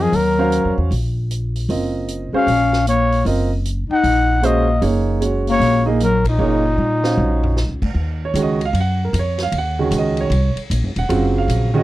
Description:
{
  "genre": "modal jazz",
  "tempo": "153 BPM",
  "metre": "4/4",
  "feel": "swing 64% on 8ths",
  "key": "Eb dorian",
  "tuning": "A4 = 440 Hz",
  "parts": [
    { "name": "breathy trumpet", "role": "melody", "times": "0.0-7.8 s", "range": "Eb4 to Gb5", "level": "-18 LUFS", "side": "equal", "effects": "none" },
    { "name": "warm bass clarinet", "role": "second line", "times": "0.0-7.8 s", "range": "Bb2 to Eb4", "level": "-21 LUFS", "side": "left 6 dB", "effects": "none" },
    { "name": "warm concert grand piano", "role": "accompaniment", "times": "0.0-11.8 s", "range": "Db3 to Gb5", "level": "-20 LUFS", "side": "right 4 dB", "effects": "none" },
    { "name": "upright bass", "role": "bass", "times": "0.0-11.8 s", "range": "Eb1 to Bb2", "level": "-19 LUFS", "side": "equal", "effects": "none" },
    { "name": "vintage drum kit", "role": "drums", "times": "0.1-11.6 s", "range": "crash cymbal, hi-hat, kick drum, ride cymbal, snare drum, toms", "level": "-30 LUFS", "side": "equal", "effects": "none" }
  ],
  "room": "little or no reverb",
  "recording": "dry, close 1970s-style studio recording",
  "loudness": "-15 LUFS",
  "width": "side -16 dB against mid",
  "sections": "0.0-8.0 A section; 8.0-11.8 B section",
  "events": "band accent 6.2; drum fill 6.8-7.6",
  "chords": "0.0 Ebm9",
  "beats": "| 0.13 0.52 0.92 1.31 | 1.70 2.09 2.48 2.87 | 3.27 3.66 4.05 4.44 | 4.83 5.22 5.62 6.01 | 6.40 6.79 7.18 7.57 | 7.97 8.36 8.75 9.14 | 9.53 9.92 10.31 10.71 | 11.10 11.49"
}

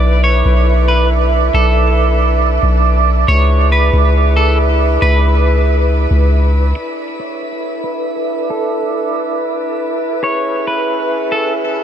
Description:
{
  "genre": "hip hop, atmospheric cloud-rap",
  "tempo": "138 BPM",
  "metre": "4/4",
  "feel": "half-time",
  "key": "B dorian",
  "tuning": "A4 = 439 Hz",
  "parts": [
    { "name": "clean electric guitar", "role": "melody", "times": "0.0-11.5 s", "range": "A4 to D5", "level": "-20 LUFS", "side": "equal", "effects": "low-pass filter, tape echo" },
    { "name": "mellow hollow flute section", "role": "sustained chords", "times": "0.0-11.8 s", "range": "C#4 to E5", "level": "-17 LUFS", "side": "right 2 dB", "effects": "low-pass filter" },
    { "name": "long sustained 808-style bass", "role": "bass", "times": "0.0-6.7 s", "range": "B1 to C#2", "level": "-12 LUFS", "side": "equal", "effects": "none" }
  ],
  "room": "light reverb, small room reverb",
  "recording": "dark, warm production",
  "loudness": "-11 LUFS",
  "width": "side -9 dB against mid",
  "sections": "0.0-6.8 A section; 6.8-11.8 B section",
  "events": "filter sweep 6.8-11.8",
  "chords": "0.0 Bm11; 3.3 C#m7; 6.8 Bm11; 10.2 C#m7",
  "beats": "0.24 0.67 1.11 | 1.54 1.98 2.41 2.85 | 3.28 3.72 4.15 4.59 | 5.02 5.46 5.89 6.33 | 6.76 7.20 7.63 8.06 | 8.50 8.94 9.37 9.80 | 10.24 10.67 11.11 11.54"
}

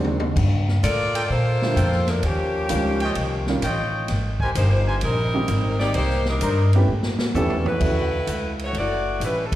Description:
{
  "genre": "jazz, big band swing",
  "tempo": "129 BPM",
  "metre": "4/4",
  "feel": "swing 68% on 8ths",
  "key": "unclear",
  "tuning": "A4 = 441 Hz",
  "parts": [
    { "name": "clear upright piano", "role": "accompaniment", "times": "0.0-8.1 s", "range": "D3 to G4", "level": "-27 LUFS", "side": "right 2 dB", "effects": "slapback echo" },
    { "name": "upright bass", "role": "bass", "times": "0.0-9.6 s", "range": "F#1 to Bb2", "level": "-22 LUFS", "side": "equal", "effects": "none" },
    { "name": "swinging big-band drum kit", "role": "drums", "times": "0.0-9.6 s", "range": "crash cymbal, hi-hat, kick drum, ride cymbal, snare drum, toms", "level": "-28 LUFS", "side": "equal", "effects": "none" },
    { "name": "bright saxophone section", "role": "melody", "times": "0.8-9.5 s", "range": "F3 to D5", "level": "-24 LUFS", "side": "left 1 dB", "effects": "slapback echo" },
    { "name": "warm trumpet section", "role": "stabs", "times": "1.2-6.6 s", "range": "Eb4 to Bb5", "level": "-30 LUFS", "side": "equal", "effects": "slapback echo" }
  ],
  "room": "light reverb, small room ambience",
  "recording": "live gig heard through the venue's PA, recital hall reverb",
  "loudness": "-19 LUFS",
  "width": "side -14 dB against mid",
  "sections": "0.0-7.8 A section; 7.8-9.6 B section",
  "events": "drum fill 0.0-0.4, 6.9-7.8",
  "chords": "0.4 Gm9; 2.2 Eb9; 4.1 Abmaj9; 6.0 Cm9; 6.9 A7; 7.8 Dmaj9",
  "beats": "| 0.36 0.83 1.29 1.76 | 2.23 2.69 3.16 3.62 | 4.09 4.55 5.02 5.49 | 5.95 6.42 6.88 7.35 | 7.82 8.28 8.75 9.21"
}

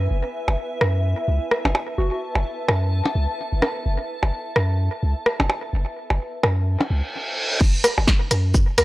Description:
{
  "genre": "minimal techno",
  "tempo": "128 BPM",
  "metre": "4/4",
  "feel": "swing 59% on 16ths",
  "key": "F# minor",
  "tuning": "A4 = 441 Hz",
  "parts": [
    { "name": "punchy sub bass", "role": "bass", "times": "0.0-8.8 s", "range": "F#1 to F#2", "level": "-21 LUFS", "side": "equal", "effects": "sidechain pumping" },
    { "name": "granular cloud pad", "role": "texture", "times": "0.0-7.1 s", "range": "B4 to A5", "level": "-30 LUFS", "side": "equal", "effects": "built-in reverb, sidechain pumping" },
    { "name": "electronic percussion blips and rim click", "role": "percussion", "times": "0.5-8.8 s", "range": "none", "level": "-21 LUFS", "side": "equal", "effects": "analog delay" },
    { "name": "soft struck synth lead", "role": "melody", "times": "2.0-2.2 s", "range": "F#4", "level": "-28 LUFS", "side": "equal", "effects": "chorus, analog delay" },
    { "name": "reverse cymbal", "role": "sound effects", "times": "6.9-7.6 s", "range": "none", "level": "-25 LUFS", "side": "right 1 dB", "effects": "none" },
    { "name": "electronic kick drum", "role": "drums", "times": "7.6-8.7 s", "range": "none", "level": "-18 LUFS", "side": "equal", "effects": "none" },
    { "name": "punchy analog drum machine", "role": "drums", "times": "7.6-8.8 s", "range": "crash cymbal, hi-hat, ride cymbal, shaker, snare drum", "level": "-24 LUFS", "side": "equal", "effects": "none" }
  ],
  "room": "digital ambience",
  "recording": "dry, gritty hardware recording, cassette tape",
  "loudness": "-20 LUFS",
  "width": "side -18 dB against mid",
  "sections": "0.0-7.6 A section; 7.6-8.8 B section",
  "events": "reverse cymbal 6.9-7.6; drop 7.6-8.8",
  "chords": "0.0 F#m7",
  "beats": "| 0.11 0.58 1.04 1.51 | 1.98 2.45 2.92 3.39 | 3.86 4.33 4.79 5.26 | 5.73 6.20 6.67 7.14 | 7.61 8.08 8.54"
}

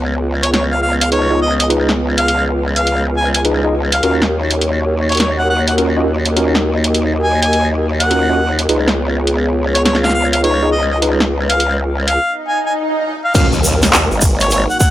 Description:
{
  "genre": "glitch hop",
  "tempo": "103 BPM",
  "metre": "4/4",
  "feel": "swing 64% on 16ths",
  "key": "Eb minor",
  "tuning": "A4 = 440 Hz",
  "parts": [
    { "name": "dark analog pad", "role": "sustained chords", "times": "0.0-14.9 s", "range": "Bb3 to Eb5", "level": "-21 LUFS", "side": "equal", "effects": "chorus, sidechain pumping" },
    { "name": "growl bass", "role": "bass", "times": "0.0-14.7 s", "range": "Ab1 to Eb2", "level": "-17 LUFS", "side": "equal", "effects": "chorus, tube saturation" },
    { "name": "clear harmonica", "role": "melody", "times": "0.4-14.9 s", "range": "Db5 to Ab5", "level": "-18 LUFS", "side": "equal", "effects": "tape echo" },
    { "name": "pop drum kit", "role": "drums", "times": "0.4-14.7 s", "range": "crash cymbal, handclaps, hi-hat, snare drum", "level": "-16 LUFS", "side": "equal", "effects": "none" },
    { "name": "tine electric piano", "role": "stabs", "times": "1.1-13.5 s", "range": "Db4 to Eb5", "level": "-20 LUFS", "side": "equal", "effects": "overdrive, fast stereo tremolo, sidechain pumping, tape echo" },
    { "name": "swell and impact", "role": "sound effects", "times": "12.4-14.9 s", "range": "none", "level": "-20 LUFS", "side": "equal", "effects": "none" },
    { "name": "electronic kick drum", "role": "drums", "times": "13.3-14.9 s", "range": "none", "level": "-13 LUFS", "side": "equal", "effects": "none" },
    { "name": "tube shaker", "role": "percussion", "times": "13.3-14.9 s", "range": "none", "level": "-20 LUFS", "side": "right 1 dB", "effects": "none" }
  ],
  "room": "light reverb",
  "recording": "dry, gritty hardware recording",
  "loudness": "-12 LUFS",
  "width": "side -14 dB against mid",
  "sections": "0.0-13.4 A section; 13.4-14.9 B section",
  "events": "break 12.2-13.4; swell 12.4-13.4; drop 13.4-14.9; impact 13.4-14.9",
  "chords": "0.0 Db7; 4.0 Ebm7; 8.7 Db7; 13.4 Ebm7",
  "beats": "0.54 1.12 | 1.70 2.28 2.87 3.45 | 4.03 4.61 5.20 5.78 | 6.36 6.94 7.53 8.11 | 8.69 9.27 9.86 10.44 | 11.02 11.60 12.19 12.77 | 13.35 13.93 14.52"
}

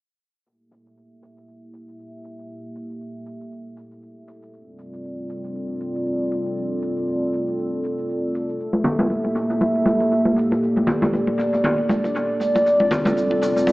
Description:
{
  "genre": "afro house",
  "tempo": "118 BPM",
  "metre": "4/4",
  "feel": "swing 57% on 16ths",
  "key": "G dorian",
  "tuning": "A4 = 439 Hz",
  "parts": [
    { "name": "dark analog pad", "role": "sustained chords", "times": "0.5-13.7 s", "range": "G3 to E5", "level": "-22 LUFS", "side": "equal", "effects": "wide subtle chorus" },
    { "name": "shaker", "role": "drums", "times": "0.5-13.7 s", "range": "none", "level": "-46 LUFS", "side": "left 1 dB", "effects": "tape echo" },
    { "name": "congas", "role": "percussion", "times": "8.7-13.7 s", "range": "none", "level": "-22 LUFS", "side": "equal", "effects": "tape echo" }
  ],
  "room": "wet echo chamber reverb, RT60 1.6 s",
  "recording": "echo-heavy mix, low-pass filter, small speaker sound",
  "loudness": "-19 LUFS",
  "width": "side -20 dB against mid",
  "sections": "0.5-13.7 A section",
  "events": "filter sweep on analog synth pad 0.5-13.7; filter sweep 0.5-13.7",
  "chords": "0.5 Gm69; 4.5 Dm7/G; 8.6 Gm69; 12.7 Dm7/G",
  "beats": "| 0.46 0.96 1.47 1.98 | 2.49 3.00 3.51 4.01 | 4.52 5.03 5.54 6.05 | 6.56 7.07 7.57 8.08 | 8.59 9.10 9.61 10.12 | 10.62 11.13 11.64 12.15 | 12.66 13.17 13.68"
}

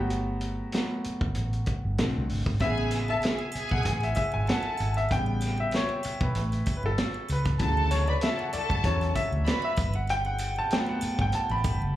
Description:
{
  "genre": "lush 1970s-style soul",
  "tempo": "96 BPM",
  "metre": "4/4",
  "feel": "swing 54% on 16ths",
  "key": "unclear",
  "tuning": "A4 = 441 Hz",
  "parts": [
    { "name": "clear grand piano", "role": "accompaniment", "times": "0.0-12.0 s", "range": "C#3 to B5", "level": "-30 LUFS", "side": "left 1 dB", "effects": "plate reverb, slapback echo" },
    { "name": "vintage muted fingered electric bass", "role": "bass", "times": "0.0-11.9 s", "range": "F#1 to F#2", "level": "-29 LUFS", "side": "equal", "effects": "none" },
    { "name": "vintage drum kit", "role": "drums", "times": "0.1-11.8 s", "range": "hi-hat, kick drum, snare drum", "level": "-30 LUFS", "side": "equal", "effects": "none" },
    { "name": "warm studio string section", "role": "second line", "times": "2.6-9.9 s", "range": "G#4 to B5", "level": "-32 LUFS", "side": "right 1 dB", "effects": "plate reverb, slapback echo" },
    { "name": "triangle", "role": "percussion", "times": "2.6-12.0 s", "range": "none", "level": "-46 LUFS", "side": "right 4 dB", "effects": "none" }
  ],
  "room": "light reverb",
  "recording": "live gig heard through the venue's PA, club reverb",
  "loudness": "-25 LUFS",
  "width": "side -13 dB against mid",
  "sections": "0.0-12.0 A section",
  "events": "grand piano solo 0.0-12.0",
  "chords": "0.0 Gmaj7; 2.0 Bbmaj7; 2.6 Amaj7; 5.1 A7; 7.6 Dmaj7; 9.8 Gmaj7",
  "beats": "| 0.12 0.74 1.36 1.99 | 2.61 3.23 3.86 4.48 | 5.10 5.73 6.35 6.97 | 7.60 8.22 8.85 9.47 | 10.09 10.71 11.34"
}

